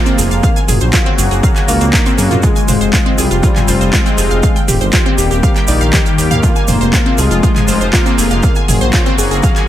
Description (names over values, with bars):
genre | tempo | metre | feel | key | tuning
melodic techno | 120 BPM | 4/4 | straight | unclear | A4 = 442 Hz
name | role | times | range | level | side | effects
fat analog lead | melody | 0.0-8.6 s | Eb3 to Bb3 | -19 LUFS | left 2 dB | lush chorus, sidechain pumping, diffuse ambient delay
sweeping resonant pad | sustained chords | 0.0-9.7 s | C3 to G4 | -20 LUFS | left 2 dB | chorus, sidechain pumping
wide unison pluck | arpeggios | 0.1-9.7 s | C4 to Ab5 | -19 LUFS | equal | sidechain pumping, diffuse ambient delay
house drum kit | drums | 0.1-9.7 s | handclaps, hi-hat, toms | -19 LUFS | equal | overdrive
tube shaker | percussion | 0.1-9.7 s | none | -23 LUFS | right 5 dB | none
dark detuned saw bass | bass | 0.2-9.4 s | Eb1 to Gb2 | -15 LUFS | equal | sidechain pumping
electronic kick drum | drums | 0.4-9.5 s | none | -13 LUFS | equal | overdrive
room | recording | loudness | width
light reverb | none | -10 LUFS | side -12 dB against mid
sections
0.0-9.7 A section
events
none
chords
0.4 Gb; 2.4 Fm; 4.4 Eb; 6.4 Fm; 8.4 Gb